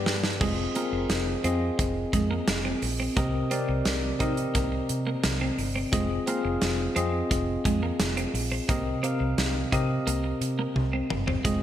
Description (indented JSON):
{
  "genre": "1980s-style pop",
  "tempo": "87 BPM",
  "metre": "4/4",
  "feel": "straight",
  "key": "C minor",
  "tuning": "A4 = 440 Hz",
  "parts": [
    { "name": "tine electric piano", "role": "accompaniment", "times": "0.0-11.6 s", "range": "G2 to F5", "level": "-29 LUFS", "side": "left 1 dB", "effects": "medium stereo tremolo" },
    { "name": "modern studio drum kit", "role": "drums", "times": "0.1-11.6 s", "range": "crash cymbal, hi-hat, kick drum, snare drum, toms", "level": "-29 LUFS", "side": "right 1 dB", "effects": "gated reverb" },
    { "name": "twelve-string electric guitar", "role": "riff", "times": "0.4-11.6 s", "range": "Ab3 to Eb4", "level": "-33 LUFS", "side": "right 4 dB", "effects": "lush chorus, digital delay" },
    { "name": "vintage muted fingered electric bass", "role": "bass", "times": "0.4-11.6 s", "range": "F1 to C3", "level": "-31 LUFS", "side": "equal", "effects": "none" }
  ],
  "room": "moderate lush hall reverb, RT60 1.9 s, small room ambience",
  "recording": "bright 1980s-style digital production",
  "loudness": "-24 LUFS",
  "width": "side -11 dB against mid",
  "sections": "0.4-11.6 A section",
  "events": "drum fill 0.0-0.4, 10.8-11.4; band accent 0.0-0.4",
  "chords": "0.4 Fm7; 3.2 Cm7; 5.9 Fm7; 8.7 Cm7"
}